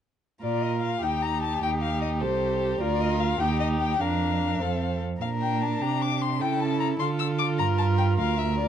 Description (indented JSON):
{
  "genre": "quick classical-period movement for string quartet",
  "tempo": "100 BPM (dotted quarters)",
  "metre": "6/8",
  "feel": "straight",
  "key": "Bb major",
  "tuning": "A4 = 440 Hz",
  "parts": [
    { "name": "warm violin", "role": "melody", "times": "0.4-8.7 s", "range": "C5 to E6", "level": "-29 LUFS", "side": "left 8 dB", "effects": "none" },
    { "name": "warm violin", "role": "second line", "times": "0.4-8.7 s", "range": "G4 to Bb4", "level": "-32 LUFS", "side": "left 2 dB", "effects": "none" },
    { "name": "warm viola", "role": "accompaniment", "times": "0.4-8.7 s", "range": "C4 to G4", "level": "-30 LUFS", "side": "right 2 dB", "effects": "none" },
    { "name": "rich cello", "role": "bass", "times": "0.4-8.7 s", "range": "C2 to D3", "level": "-27 LUFS", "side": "right 4 dB", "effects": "none" }
  ],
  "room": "light reverb",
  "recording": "dark, warm production",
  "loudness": "-23 LUFS",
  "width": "side -9 dB against mid",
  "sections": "0.4-8.7 A section",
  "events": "none",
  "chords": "0.4 Bb5; 1.0 Eb; 1.6 Cm6; 2.8 Bb/D; 3.4 Eb; 4.0 Bb/F; 4.6 F; 5.2 Bb; 5.8 C5; 6.4 A/C#; 7.0 Dm; 7.6 Gm7",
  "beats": "| 0.43 1.03 | 1.63 2.22 | 2.82 3.41 | 4.01 4.61 | 5.21 5.82 | 6.41 7.00 | 7.59 8.19"
}